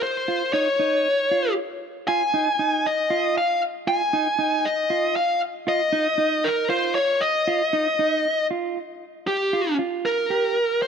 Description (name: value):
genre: progressive instrumental, progressive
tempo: 234 BPM (eighths)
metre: 7/8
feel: straight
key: unclear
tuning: A4 = 439 Hz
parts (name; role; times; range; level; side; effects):
- bluesy overdriven lead guitar; melody; 0.0-10.9 s; G4 to Ab5; -21 LUFS; left 1 dB; distortion
- mellow electric guitar; arpeggios; 0.3-10.6 s; Eb4 to G4; -28 LUFS; right 5 dB; ping-pong delay
room: moderate plate reverb, RT60 3.0 s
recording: none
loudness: -20 LUFS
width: side -7 dB against mid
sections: 0.0-9.0 A section; 9.0-10.9 B section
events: none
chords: 0.0 N.C.; 9.0 Fsus2